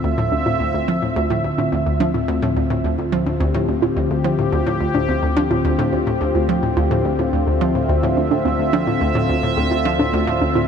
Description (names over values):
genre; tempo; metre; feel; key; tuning
ambient, sequencer-driven space music; 107 BPM; 4/4; straight; D minor; A4 = 441 Hz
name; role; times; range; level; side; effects
sweeping resonant pad; sustained chords; 0.0-10.7 s; D2 to E5; -19 LUFS; left 1 dB; chorus, shimmer reverb
warbly dusty pluck; arpeggios; 0.0-10.7 s; C4 to D5; -25 LUFS; moving between left 2 dB and right 7 dB; none
hollow square pluck; riff; 0.0-10.6 s; D2 to F3; -21 LUFS; equal; chorus, tape echo
room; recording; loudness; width
moderate huge ambient reverb, RT60 8.6 s; none; -16 LUFS; side -7 dB against mid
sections
0.0-10.7 A section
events
none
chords
0.0 Dm7